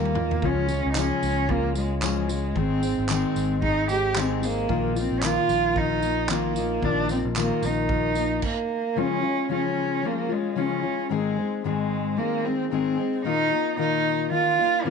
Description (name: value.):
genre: acoustic pop.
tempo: 112 BPM.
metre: 4/4.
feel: swing 60% on 16ths.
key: unclear.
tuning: A4 = 440 Hz.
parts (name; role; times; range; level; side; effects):
dark cello; melody; 0.0-14.9 s; Ab3 to G4; -25 LUFS; right 3 dB; none.
fingerpicked steel-string acoustic guitar; accompaniment; 0.0-14.9 s; Ab2 to Ab4; -27 LUFS; left 10 dB; none.
fingered electric bass; bass; 0.0-8.4 s; Ab1 to Eb2; -29 LUFS; right 2 dB; none.
natural country drum kit; drums; 0.1-8.6 s; crash cymbal, handclaps, kick drum, tambourine, toms; -32 LUFS; right 2 dB; none.
tambourine; percussion; 1.0-7.5 s; none; -37 LUFS; right 19 dB; none.
room: light reverb, small room reverb.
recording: 1960s-style stereo with parts hard left and right, nothing above 10.5 kHz.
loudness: -22 LUFS.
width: side -6 dB against mid.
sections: 0.0-9.0 A section; 9.0-14.9 A section.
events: drum fill 0.0-0.4; stop 8.4-9.0.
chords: 0.4 Db; 2.6 Ab; 4.7 Bbsus4; 9.0 Db; 11.1 Ab; 13.2 Bbsus4.